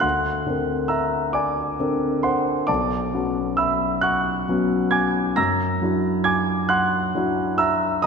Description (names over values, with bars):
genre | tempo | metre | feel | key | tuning
classical, impressionist solo piano | 45 BPM (dotted quarters) | 6/8 | rubato | unclear | A4 = 440 Hz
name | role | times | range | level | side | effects
warm concert grand piano | solo | 0.0-8.1 s | B1 to A#6 | -19 LUFS | equal | none
room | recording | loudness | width
wet concert hall reverb, RT60 1.9 s | none | -19 LUFS | side -5 dB against mid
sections
0.0-8.1 A section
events
none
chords
0.0 Daug7; 2.7 Bmadd9; 5.4 F#aug7